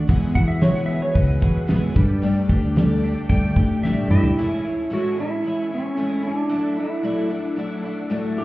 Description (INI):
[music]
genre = folk rock and heartland rock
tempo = 112 BPM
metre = 4/4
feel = straight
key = A major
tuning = A4 = 440 Hz
[part]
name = clean lap steel guitar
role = second line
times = 0.0-4.4 s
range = B4 to G5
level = -29 LUFS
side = equal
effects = tape echo
[part]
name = picked twelve-string acoustic guitar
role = accompaniment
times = 0.0-8.4 s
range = E2 to G4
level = -25 LUFS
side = left 2 dB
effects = analog chorus
[part]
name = bright tonewheel organ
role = sustained chords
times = 0.0-8.4 s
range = G#4 to D6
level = -38 LUFS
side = right 1 dB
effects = slow rotary speaker, chorus vibrato
[part]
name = electric guitar through a small old amp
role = riff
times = 0.0-4.4 s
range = E2 to G4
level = -28 LUFS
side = right 2 dB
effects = none
[part]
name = fingered electric bass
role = bass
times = 0.0-4.3 s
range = C#2 to E3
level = -20 LUFS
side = equal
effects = none
[part]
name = damped 70s drum kit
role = drums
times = 0.1-4.4 s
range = hi-hat, kick drum, snare drum, toms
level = -20 LUFS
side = equal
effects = none
[part]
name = clean lap steel guitar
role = melody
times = 4.1-8.4 s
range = C#4 to G4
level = -23 LUFS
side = right 1 dB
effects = none
[sound]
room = light reverb, studio ambience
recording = heard muffled through a wall, club reverb, EQ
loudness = -18 LUFS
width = side -18 dB against mid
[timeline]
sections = 0.0-4.4 A section; 4.4-8.4 B section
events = electric slide guitar solo 0.0-4.4; drum fill 3.8-4.4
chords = 0.1 Eadd9; 2.0 Gsus2; 4.4 Amaj7; 6.5 Dadd9/A